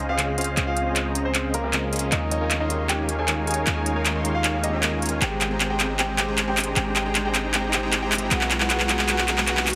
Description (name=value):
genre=future bass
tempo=155 BPM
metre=4/4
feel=half-time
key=Db lydian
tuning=A4 = 439 Hz
part: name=clear concert grand piano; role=melody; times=0.0-9.8 s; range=Bb3 to Ab5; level=-32 LUFS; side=equal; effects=dub echo
part: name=ethereal airy pad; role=sustained chords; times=0.1-9.8 s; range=Db3 to G5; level=-38 LUFS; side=equal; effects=none
part: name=supersaw chords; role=riff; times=0.0-9.7 s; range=Ab3 to C6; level=-30 LUFS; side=equal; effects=low-pass filter
part: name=warm 808-style bass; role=bass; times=0.0-9.8 s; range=Ab1 to Eb2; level=-32 LUFS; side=equal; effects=none
part: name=riser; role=sound effects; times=1.7-9.8 s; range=none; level=-38 LUFS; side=equal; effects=none
part: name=tine electric piano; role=accompaniment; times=0.2-5.2 s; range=Db3 to Ab4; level=-34 LUFS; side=equal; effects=digital delay
part: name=trap drum kit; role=drums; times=0.2-9.8 s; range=handclaps, hi-hat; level=-26 LUFS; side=equal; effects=overdrive
part: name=concert harp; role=arpeggios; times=5.2-9.8 s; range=Cb4 to Eb5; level=-38 LUFS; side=equal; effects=none
room=light reverb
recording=heavily compressed radio sound, multiband compression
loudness=-23 LUFS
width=mono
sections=0.0-9.8 A section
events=build-up 0.0-9.8; drum fill 0.0-9.8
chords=0.0 Dbmaj7; 2.1 Eb9sus4; 5.2 Abmaj7; 8.3 Cb6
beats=0.18 | 0.57 0.96 1.34 1.73 | 2.12 2.51 2.89 3.28 | 3.67 4.05 4.44 4.83 | 5.22 5.60 5.99 6.38 | 6.76 7.15 7.54 7.93 | 8.31 8.70 9.09 9.47